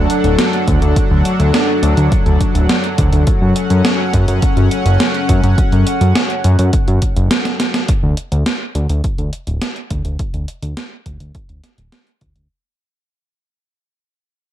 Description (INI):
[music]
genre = synthwave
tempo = 104 BPM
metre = 4/4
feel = straight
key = F# minor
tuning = A4 = 441 Hz
[part]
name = chorused pulse-width pad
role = sustained chords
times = 0.0-7.8 s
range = F#3 to F#5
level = -18 LUFS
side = left 1 dB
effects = sidechain pumping
[part]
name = fat analog bass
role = bass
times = 0.0-12.5 s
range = D1 to F#2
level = -14 LUFS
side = equal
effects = none
[part]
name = gated 80s digital drum machine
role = drums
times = 0.1-12.5 s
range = hi-hat, snare drum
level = -18 LUFS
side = right 1 dB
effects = gated reverb, gated reverb snare
[part]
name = electronic kick drum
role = drums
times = 0.7-12.3 s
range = none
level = -16 LUFS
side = equal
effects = none
[sound]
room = light reverb, digital ambience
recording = dark, warm production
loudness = -12 LUFS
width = side -12 dB against mid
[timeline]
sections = 0.0-7.9 A section; 7.9-12.5 B section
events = break 7.3-7.9; drum fill 7.5-7.9; fade-out 7.9-12.5; filter sweep on analog synth bass 7.9-12.5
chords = 0.0 D; 3.3 F#m; 7.9 N.C.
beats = 0.39 | 0.96 1.54 2.12 2.69 | 3.27 3.85 4.42 5.00 | 5.58 6.16 6.73 7.31 | 7.89 8.46 9.04 9.62 | 10.19 10.77 11.35 11.93